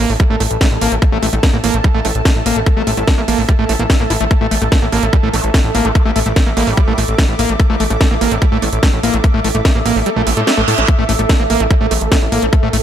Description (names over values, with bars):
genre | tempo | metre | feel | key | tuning
psychedelic trance | 146 BPM | 4/4 | straight | unclear | A4 = 440 Hz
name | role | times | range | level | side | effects
screaming distorted acid line | riff | 0.0-12.8 s | G3 to E4 | -18 LUFS | moving between left 6 dB and right 6 dB | distortion, chorus, auto-pan, sidechain pumping, dub echo
fat analog bass | bass | 0.0-12.8 s | A1 to A2 | -18 LUFS | equal | none
downlifter and reverse cymbal | sound effects | 0.0-1.0, 10.2-10.9 s | none | -23 LUFS | right 6 dB | none
granular cloud pad | texture | 0.0-12.8 s | A4 to D6 | -21 LUFS | right 1 dB | built-in reverb, sidechain pumping
drum and bass drum kit | drums | 0.1-12.8 s | hi-hat, snare drum | -20 LUFS | right 1 dB | overdrive
electronic kick drum | drums | 0.2-12.6 s | none | -12 LUFS | equal | overdrive
vowel-sweep wobble bass | second line | 0.6-0.8, 5.3-7.0, 11.9-12.0 s | G3 to A3 | -30 LUFS | right 2 dB | none
room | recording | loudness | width
light reverb | dark, warm production | -12 LUFS | side -10 dB against mid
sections
0.0-12.8 A section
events
kick drops out 10.1-10.9; reverse cymbal 10.2-10.9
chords
0.0 A5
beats
0.20 0.61 | 1.02 1.43 1.84 2.25 | 2.66 3.08 3.49 3.90 | 4.31 4.72 5.13 5.54 | 5.95 6.36 6.77 7.18 | 7.60 8.01 8.42 8.83 | 9.24 9.65 10.06 10.47 | 10.88 11.29 11.71 12.12 | 12.53